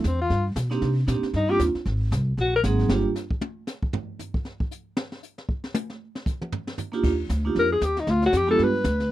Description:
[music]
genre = jazz, small-group swing and bop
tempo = 232 BPM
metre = 4/4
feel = swing 58% on 8ths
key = Eb major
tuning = A4 = 440 Hz
[part]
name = clear alto saxophone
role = melody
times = 0.0-2.6, 7.6-9.1 s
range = C4 to B4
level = -22 LUFS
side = left 3 dB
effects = none
[part]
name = upright bass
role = bass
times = 0.0-3.0, 7.0-9.1 s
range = G1 to C3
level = -24 LUFS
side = equal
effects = none
[part]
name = jazz brush drum kit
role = drums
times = 0.0-9.1 s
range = brushed snare drum, crash cymbal, hi-hat, kick drum, snare drum, toms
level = -30 LUFS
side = equal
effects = none
[part]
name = vibraphone with medium mallets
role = accompaniment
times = 0.7-3.0, 6.9-8.6 s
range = Gb3 to Ab4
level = -25 LUFS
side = right 4 dB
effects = none
[sound]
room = little or no reverb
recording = dry, close 1970s-style studio recording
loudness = -22 LUFS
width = side -14 dB against mid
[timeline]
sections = 0.0-7.0 A section; 7.0-9.1 A section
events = alto saxophone solo 0.0-9.1; drum solo 2.9-7.0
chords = 0.3 G; 0.8 Cm9; 1.9 Ab9; 2.9 Gm7; 3.9 N.C.; 5.0 Ebmaj7; 7.0 Ebmaj7(no3); 8.1 Dm; 8.6 G

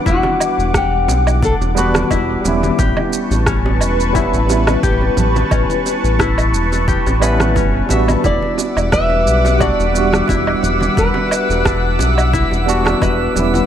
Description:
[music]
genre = sunset chillout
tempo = 88 BPM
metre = 4/4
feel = swing 54% on 16ths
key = E dorian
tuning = A4 = 440 Hz
[part]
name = flamenco guitar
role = melody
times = 0.0-2.4, 8.3-11.6 s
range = F#4 to E5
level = -21 LUFS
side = left 1 dB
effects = tape echo
[part]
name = tine electric piano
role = accompaniment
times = 0.0-13.7 s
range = G3 to F#5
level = -21 LUFS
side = equal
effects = medium stereo tremolo, auto-pan, tape echo
[part]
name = lush unison pad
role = sustained chords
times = 0.0-13.7 s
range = E3 to D6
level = -21 LUFS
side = equal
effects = chorus, phaser
[part]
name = concert harp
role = arpeggios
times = 0.0-13.7 s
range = C#4 to F#5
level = -23 LUFS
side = left 5 dB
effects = tape echo
[part]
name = round analog bass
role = bass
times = 0.1-13.6 s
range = E1 to B1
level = -17 LUFS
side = equal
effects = none
[part]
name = electronic kick drum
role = drums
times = 0.1-13.2 s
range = none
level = -21 LUFS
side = equal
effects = overdrive
[part]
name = electronic shaker, woodblock and rim click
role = drums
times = 0.1-13.7 s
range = none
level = -22 LUFS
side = right 3 dB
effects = overdrive
[part]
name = bongos and congas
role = percussion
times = 0.2-13.7 s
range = none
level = -25 LUFS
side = right 4 dB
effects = none
[part]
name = drifting glass-harmonics texture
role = texture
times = 8.5-13.7 s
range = E5 to E6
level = -26 LUFS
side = right 2 dB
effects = chorus, built-in reverb
[sound]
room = light reverb, digital ambience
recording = none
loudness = -13 LUFS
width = side -10 dB against mid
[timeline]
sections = 0.0-13.7 A section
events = none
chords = 0.0 Em9; 2.8 A9; 8.2 Em9

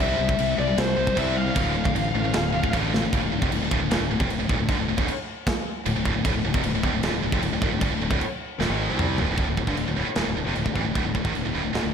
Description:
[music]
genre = heavy metal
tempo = 153 BPM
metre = 4/4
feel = straight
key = D minor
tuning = A4 = 438 Hz
[part]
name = high-gain lead guitar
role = melody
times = 0.0-2.7 s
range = C5 to F5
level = -27 LUFS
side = left 3 dB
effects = distortion, ping-pong delay
[part]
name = heavy high-gain guitar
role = riff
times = 0.0-11.9 s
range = D2 to C4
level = -28 LUFS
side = left 8 dB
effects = distortion
[part]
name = heavy high-gain guitar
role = riff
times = 0.0-11.9 s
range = D2 to C4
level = -28 LUFS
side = right 11 dB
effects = distortion
[part]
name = fuzz fingered electric bass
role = bass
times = 0.0-11.9 s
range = D1 to C2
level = -29 LUFS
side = right 1 dB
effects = overdrive
[part]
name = tight metal drum kit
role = drums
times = 0.0-11.8 s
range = china cymbal, crash cymbal, kick drum, snare drum, toms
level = -27 LUFS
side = right 1 dB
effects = none
[sound]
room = moderate recital hall reverb, RT60 1.5 s, small room ambience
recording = big arena sound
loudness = -22 LUFS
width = side -7 dB against mid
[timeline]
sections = 0.0-3.1 A section; 3.1-9.4 B section; 9.4-11.9 C section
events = drum fill 2.9, 8.6-9.4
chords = 0.0 C; 1.6 Dm; 9.4 D5

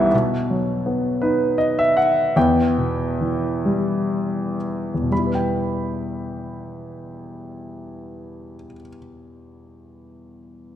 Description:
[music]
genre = classical, lyrical solo piano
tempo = 37-54 BPM (dotted quarters)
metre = 6/8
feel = rubato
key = E minor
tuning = A4 = 440 Hz
[part]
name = clear grand piano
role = solo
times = 0.0-10.8 s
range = B1 to B5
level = -20 LUFS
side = equal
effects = none
[sound]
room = wet concert hall reverb, RT60 2.1 s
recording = recorded in a church or concert hall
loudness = -19 LUFS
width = side -10 dB against mid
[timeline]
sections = 0.1-5.1 A section; 5.1-10.8 B section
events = slowing down 0.1-5.1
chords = 0.1 B; 2.4 Em

